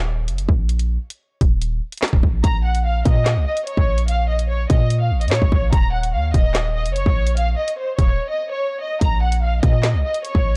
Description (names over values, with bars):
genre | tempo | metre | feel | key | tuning
hip hop, drill | 146 BPM | 4/4 | half-time | unclear | A4 = 440 Hz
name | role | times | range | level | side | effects
hard-hitting 808-style bass | bass | 0.0-10.6 s | Eb1 to Bb2 | -22 LUFS | equal | none
drill drum kit | drums | 0.3-10.4 s | handclaps, hi-hat, kick drum, snare drum | -21 LUFS | equal | none
warm studio violin section | melody | 2.4-10.6 s | C5 to Bb5 | -26 LUFS | equal | low-pass filter
room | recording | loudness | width
little or no reverb | dark, warm production | -19 LUFS | mono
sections
0.0-10.6 A section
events
break 0.0-2.4, 8.2-9.0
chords
0.0 Eb5; 2.4 Bbm; 5.7 Eb5; 9.0 Bbm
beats
0.38 | 0.79 1.21 1.62 2.03 | 2.44 2.85 3.26 3.67 | 4.08 4.49 4.90 5.32 | 5.73 6.14 6.55 6.96 | 7.37 7.78 8.19 8.60 | 9.01 9.42 9.84 10.25